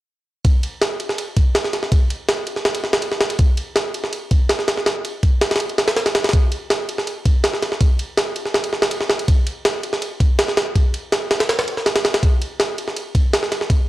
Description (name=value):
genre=drum and bass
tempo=163 BPM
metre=4/4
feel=straight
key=none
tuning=none
part: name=jungle sampler-style drum kit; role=drums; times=0.4-13.8 s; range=kick drum, ride cymbal, snare drum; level=-17 LUFS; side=equal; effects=none
room=light reverb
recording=dry, gritty hardware recording, cassette tape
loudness=-17 LUFS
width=side -16 dB against mid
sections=0.4-12.2 A section; 12.2-13.9 B section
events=build-up 12.2-13.9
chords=none